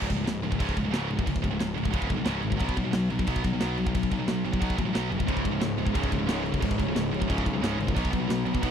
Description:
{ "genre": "heavy metal", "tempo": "180 BPM", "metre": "4/4", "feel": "straight", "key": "C# minor", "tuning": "A4 = 440 Hz", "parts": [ { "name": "heavy high-gain guitar", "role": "riff", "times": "0.0-8.7 s", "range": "C#2 to B3", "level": "-32 LUFS", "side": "right 16 dB", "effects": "distortion" }, { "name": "scooped high-gain guitar", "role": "riff", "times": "0.0-8.7 s", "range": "C#2 to B3", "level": "-31 LUFS", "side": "left 11 dB", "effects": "distortion" }, { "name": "fuzz picked electric bass", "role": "bass", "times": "0.0-8.7 s", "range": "C#1 to B1", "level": "-32 LUFS", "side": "equal", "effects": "overdrive" }, { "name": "tight metal drum kit", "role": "drums", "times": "0.0-8.7 s", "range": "crash cymbal, kick drum, snare drum", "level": "-30 LUFS", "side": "equal", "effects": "none" }, { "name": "dark chamber string section", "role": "sustained chords", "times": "5.3-8.7 s", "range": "F#3 to C#5", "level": "-41 LUFS", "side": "left 2 dB", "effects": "none" }, { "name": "distorted electric guitar", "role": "riff", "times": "5.3-8.7 s", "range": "C#2 to B3", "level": "-32 LUFS", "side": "equal", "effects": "distortion" } ], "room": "little or no reverb", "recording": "dry, close 1970s-style studio recording", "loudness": "-25 LUFS", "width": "side -8 dB against mid", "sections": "0.0-8.7 A section", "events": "none", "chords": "0.0 C#5; 2.6 B5; 5.3 C#m; 8.0 B" }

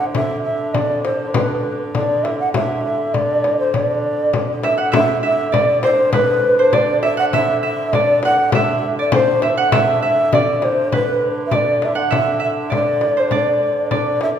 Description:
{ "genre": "medieval dance", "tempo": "100 BPM", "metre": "2/4", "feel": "straight", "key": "D mixolydian", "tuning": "A4 = 440 Hz", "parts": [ { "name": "breathy mellow long shakuhachi", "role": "melody", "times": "0.0-14.3 s", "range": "B4 to F#5", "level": "-17 LUFS", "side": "equal", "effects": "none" }, { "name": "dark hurdy-gurdy", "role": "drone", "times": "0.0-14.4 s", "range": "D3", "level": "-26 LUFS", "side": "right 1 dB", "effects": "none" }, { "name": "frame drum", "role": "percussion", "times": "0.1-14.4 s", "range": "none", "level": "-22 LUFS", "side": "left 3 dB", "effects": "none" }, { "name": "concert harp", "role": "second line", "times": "4.6-14.4 s", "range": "B4 to F#5", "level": "-21 LUFS", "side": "right 4 dB", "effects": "none" } ], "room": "wet recital hall reverb, RT60 1.8 s", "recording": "minimal, uncompressed stereo recording", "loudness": "-15 LUFS", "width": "side -9 dB against mid", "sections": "0.0-4.9 A section; 4.9-14.4 A section", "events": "none", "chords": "none" }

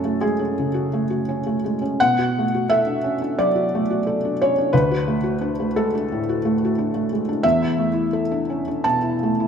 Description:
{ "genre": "neoclassical minimalist piano", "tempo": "88 BPM", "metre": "4/4", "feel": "rubato", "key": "B dorian", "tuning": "A4 = 440 Hz", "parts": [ { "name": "felt-muted upright piano", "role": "solo", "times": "0.0-9.5 s", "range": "D2 to A5", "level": "-19 LUFS", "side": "equal", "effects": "none" } ], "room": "moderate concert hall reverb, RT60 2.1 s", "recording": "minimal, uncompressed stereo recording", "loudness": "-19 LUFS", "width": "side -7 dB against mid", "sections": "0.0-9.5 A section", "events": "none", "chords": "0.0 F#madd9; 2.0 Bm7; 4.7 D; 7.4 E7sus4" }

